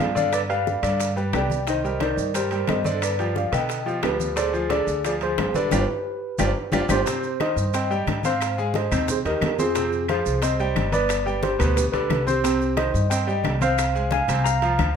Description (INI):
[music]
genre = latin, salsa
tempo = 178 BPM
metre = 4/4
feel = straight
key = C minor from 7.1 s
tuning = A4 = 440 Hz
[part]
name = tine electric piano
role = melody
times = 0.0-15.0 s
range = F4 to Bb5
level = -24 LUFS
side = equal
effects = medium stereo tremolo
[part]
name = bright baby grand piano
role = accompaniment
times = 0.0-14.9 s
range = B2 to C6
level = -26 LUFS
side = equal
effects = none
[part]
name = upright bass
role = bass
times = 0.0-15.0 s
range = G1 to B2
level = -27 LUFS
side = equal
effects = none
[part]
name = congas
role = percussion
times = 0.0-15.0 s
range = none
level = -32 LUFS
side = left 2 dB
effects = none
[part]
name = maracas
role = percussion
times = 0.0-15.0 s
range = none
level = -37 LUFS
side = right 10 dB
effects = none
[part]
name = bongos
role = percussion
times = 0.3-15.0 s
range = none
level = -32 LUFS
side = left 8 dB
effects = none
[part]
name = claves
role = percussion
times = 0.3-15.0 s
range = none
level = -35 LUFS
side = left 7 dB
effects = none
[part]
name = timbales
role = percussion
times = 0.3-15.0 s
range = none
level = -33 LUFS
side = right 6 dB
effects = none
[sound]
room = moderate large studio reverb, RT60 0.8 s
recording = minimal, uncompressed stereo recording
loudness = -20 LUFS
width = side -7 dB against mid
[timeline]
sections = 0.0-7.1 A section; 7.1-15.0 B section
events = band accent 5.7-7.1; drum fill 6.2-7.1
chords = 0.3 G; 1.7 Cm7; 3.0 G7; 4.4 Ddim; 5.7 G7; 7.1 Cm; 8.4 Abadd9; 9.8 Fmadd9; 11.1 G; 12.4 Cm; 13.8 Fm/C